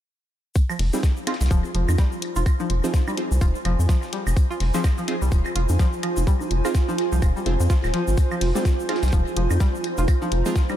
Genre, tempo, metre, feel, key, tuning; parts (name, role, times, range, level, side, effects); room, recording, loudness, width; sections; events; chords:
minimal techno; 126 BPM; 4/4; swing 58% on 16ths; F minor; A4 = 440 Hz
dusty soul sampler-style drum kit; drums; 0.6-10.7 s; hi-hat, snare drum, tambourine; -41 LUFS; left 2 dB; high-pass filter on perc, high-pass filter on snare, high-pass filter on hats, high-pass filter on room
electronic kick drum; drums; 0.6-10.7 s; -19 LUFS; equal
tube shaker; percussion; 0.6-10.8 s; -40 LUFS; left 3 dB
granular cloud pad; texture; 1.6-10.8 s; F4 to Bb5; -29 LUFS; right 3 dB; built-in reverb, sidechain pumping
string-like resonator pluck; riff; 0.7-10.7 s; F3 to F4; -30 LUFS; left 1 dB; chorus, sidechain pumping, ping-pong delay
woodblock and congas; percussion; 0.7-10.8 s; -35 LUFS; right 2 dB; ping-pong delay
rubbery square bass; bass; 0.8-10.4 s; Eb1 to F2; -21 LUFS; equal; sidechain pumping
electronic hi-hat; drums; 0.8-10.4 s; -34 LUFS; left 4 dB
wavetable chord stab; stabs; 0.9-10.5 s; C4 to Ab4; -32 LUFS; right 1 dB; vintage 12-bit sampler grit, ping-pong delay
light reverb, digital ambience; -19 LUFS; side -12 dB against mid
0.6-10.8 A section
0.6 Fm7